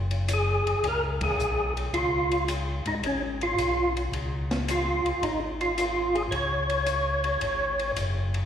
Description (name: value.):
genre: soul jazz organ trio.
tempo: 109 BPM.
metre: 4/4.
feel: swing 69% on 8ths.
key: Db mixolydian.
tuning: A4 = 440 Hz.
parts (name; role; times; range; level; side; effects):
mellow tonewheel organ; bass; 0.0-8.5 s; Gb1 to Ab2; -30 LUFS; left 1 dB; overdrive, chorus vibrato, slow rotary speaker.
open jazz drum kit; drums; 0.1-8.4 s; hi-hat, kick drum, ride cymbal, snare drum; -34 LUFS; left 3 dB; none.
percussive tonewheel organ; melody; 0.3-7.9 s; Db4 to Db5; -26 LUFS; equal; slow rotary speaker, overdrive, chorus vibrato, slapback echo.
room: moderate lush hall reverb, RT60 2.1 s.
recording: live gig heard through the venue's PA, recital hall reverb.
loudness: -24 LUFS.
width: side -9 dB against mid.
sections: 0.0-8.5 A section.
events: band accent 1.1.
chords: 0.0 Gb5; 1.9 Db7.